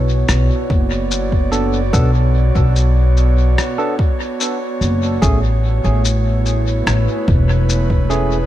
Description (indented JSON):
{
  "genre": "ambient dub",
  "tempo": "73 BPM",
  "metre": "4/4",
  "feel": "straight",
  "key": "B minor",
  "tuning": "A4 = 440 Hz",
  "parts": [
    { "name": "airy breathy pad", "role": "sustained chords", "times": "0.0-8.5 s", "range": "A3 to D5", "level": "-22 LUFS", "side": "right 2 dB", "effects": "chorus" },
    { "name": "upright bass", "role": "bass", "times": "0.0-8.5 s", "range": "E1 to B1", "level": "-15 LUFS", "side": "equal", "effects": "none" },
    { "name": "electronic rim click and shaker", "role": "drums", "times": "0.3-8.3 s", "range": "none", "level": "-24 LUFS", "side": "left 2 dB", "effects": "dub echo" },
    { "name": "electronic kick drum", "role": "drums", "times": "0.7-8.1 s", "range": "none", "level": "-17 LUFS", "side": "equal", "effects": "overdrive" },
    { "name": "barky tine electric piano", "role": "stabs", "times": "1.5-8.4 s", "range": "A3 to A4", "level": "-24 LUFS", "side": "right 2 dB", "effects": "dub echo" }
  ],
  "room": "little or no reverb",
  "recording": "none",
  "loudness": "-13 LUFS",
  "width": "side -13 dB against mid",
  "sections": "0.0-8.5 A section",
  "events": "none",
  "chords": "0.0 Bm; 5.2 Amaj7",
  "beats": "0.29 1.11 | 1.93 2.75 3.58 4.40 | 5.22 6.04 6.86 7.68"
}